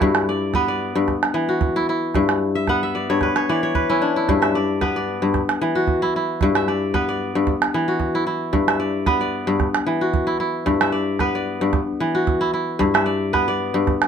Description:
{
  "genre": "west african traditional, West African string and xylophone music",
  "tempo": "113 BPM",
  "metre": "4/4",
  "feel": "swing 53% on 16ths",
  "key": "G lydian",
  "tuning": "A4 = 440 Hz",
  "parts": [
    { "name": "kora", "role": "arpeggios", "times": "0.0-14.1 s", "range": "G2 to F#5", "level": "-19 LUFS", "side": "left 2 dB", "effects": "none" },
    { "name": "calabash", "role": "percussion", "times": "0.0-14.1 s", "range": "none", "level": "-22 LUFS", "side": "right 6 dB", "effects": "none" }
  ],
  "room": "moderate small room reverb, RT60 0.5 s",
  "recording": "minimal, uncompressed stereo recording",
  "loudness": "-18 LUFS",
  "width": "side -7 dB against mid",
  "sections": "0.0-14.1 A section",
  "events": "kora fill 2.5-4.3",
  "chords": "0.0 G; 1.1 Esus2; 2.1 G; 3.2 N.C.; 4.3 G; 5.3 Esus2; 6.4 G; 7.5 Esus2; 8.5 G; 9.6 Esus2; 10.7 G; 11.7 Esus2; 12.8 G"
}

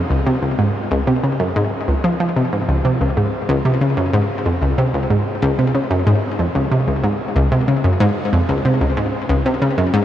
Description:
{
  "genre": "ambient",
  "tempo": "93 BPM",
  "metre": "4/4",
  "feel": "straight",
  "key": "Db major",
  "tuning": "A4 = 437 Hz",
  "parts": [
    { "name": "analog pluck", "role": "solo", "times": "0.1-10.0 s", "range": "Db2 to F3", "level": "-15 LUFS", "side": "equal", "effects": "chorus, ping-pong delay" }
  ],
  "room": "wet shimmer reverb, RT60 7.9 s",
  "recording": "worn, warbling old tape, cassette tape, warbly pitch drift",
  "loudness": "-15 LUFS",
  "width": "side -11 dB against mid",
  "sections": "0.0-10.0 A section",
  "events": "none",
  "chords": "none"
}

